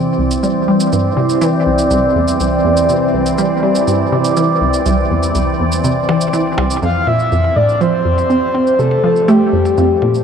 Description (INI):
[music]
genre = ambient, sequencer-driven space music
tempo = 122 BPM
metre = 4/4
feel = straight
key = F major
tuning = A4 = 439 Hz
[part]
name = evolving wavetable pad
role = sustained chords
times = 0.0-10.2 s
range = E3 to D5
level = -16 LUFS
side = right 1 dB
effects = phaser, built-in reverb
[part]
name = resonant blip pluck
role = riff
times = 0.0-10.2 s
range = C2 to C4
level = -15 LUFS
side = equal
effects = lush chorus, vintage 12-bit sampler grit, tape echo
[part]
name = shaker and percussion blips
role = percussion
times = 0.3-10.2 s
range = none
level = -26 LUFS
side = right 3 dB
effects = tape echo
[part]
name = breathy flute-like synth lead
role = melody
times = 6.8-10.2 s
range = G4 to F5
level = -14 LUFS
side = left 2 dB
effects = lush chorus, tape echo
[sound]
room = wet huge ambient reverb, RT60 9.3 s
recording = none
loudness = -12 LUFS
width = side -7 dB against mid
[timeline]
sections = 0.0-6.8 A section; 6.8-10.2 B section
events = none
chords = 0.0 C; 6.8 Fsus2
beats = 0.43 | 0.92 1.42 1.91 2.40 | 2.89 3.38 3.88 4.37 | 4.86 5.35 5.84 6.33 | 6.83 7.32 7.81 8.30 | 8.79 9.28 9.78